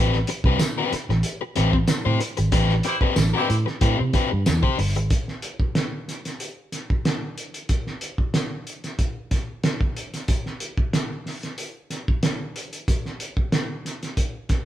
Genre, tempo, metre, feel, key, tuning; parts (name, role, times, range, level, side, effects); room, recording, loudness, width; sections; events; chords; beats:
funk; 93 BPM; 4/4; straight; A minor; A4 = 440 Hz
crunchy overdriven guitar; accompaniment; 0.0-5.0 s; C4 to C5; -25 LUFS; left 5 dB
vintage muted fingered electric bass; bass; 0.0-5.1 s; G1 to C3; -22 LUFS; right 1 dB
cloth-damped thuddy drum kit; drums; 0.1-14.7 s; hi-hat, kick drum, snare drum; -24 LUFS; right 1 dB
tambourine; percussion; 0.6-4.6 s; -36 LUFS; left 1 dB
warm horn section; second line; 2.8-3.6 s; E4 to C5; -27 LUFS; equal
light reverb; band playing live in one room; -21 LUFS; side -12 dB against mid
0.0-5.1 A section; 5.1-14.7 B section
band accent 2.5-5.1
0.0 Am9; 5.1 N.C.
0.59 1.24 1.88 | 2.53 3.17 3.82 4.46 | 5.11 5.75 6.40 7.05 | 7.70 8.34 8.99 9.64 | 10.29 10.94 11.58 12.23 | 12.88 13.53 14.18